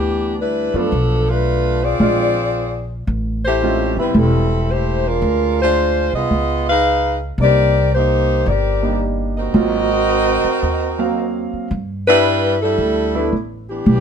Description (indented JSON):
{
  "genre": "jazz, big band swing",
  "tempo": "111 BPM",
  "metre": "4/4",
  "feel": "swing 67% on 8ths",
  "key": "unclear",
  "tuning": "A4 = 440 Hz",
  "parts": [
    { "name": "dark saxophone section", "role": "melody", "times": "0.0-14.0 s", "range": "E3 to E#5", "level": "-17 LUFS", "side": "equal", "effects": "none" },
    { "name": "upright bass", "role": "bass", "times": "0.0-14.0 s", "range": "E1 to G2", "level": "-19 LUFS", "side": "equal", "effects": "none" },
    { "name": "warm concert grand piano", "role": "accompaniment", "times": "0.7-13.3 s", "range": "Gb3 to F5", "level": "-21 LUFS", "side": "right 3 dB", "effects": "none" }
  ],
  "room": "light reverb",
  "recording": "minimal, uncompressed stereo recording",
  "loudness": "-15 LUFS",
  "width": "side -7 dB against mid",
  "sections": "0.0-14.0 A section",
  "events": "none",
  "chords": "0.0 G6; 0.9 Bm7b5; 2.0 Bb9; 3.1 Am7; 5.2 Dm7b5; 6.3 C#9; 7.4 Cm7; 9.6 Ab13; 11.7 G6",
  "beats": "0.39 | 0.93 1.46 2.00 2.54 | 3.08 3.62 4.16 4.70 | 5.24 5.78 6.31 6.85 | 7.39 7.93 8.47 9.01 | 9.55 10.09 10.63 11.17 | 11.71 12.25 12.79 13.33 | 13.87"
}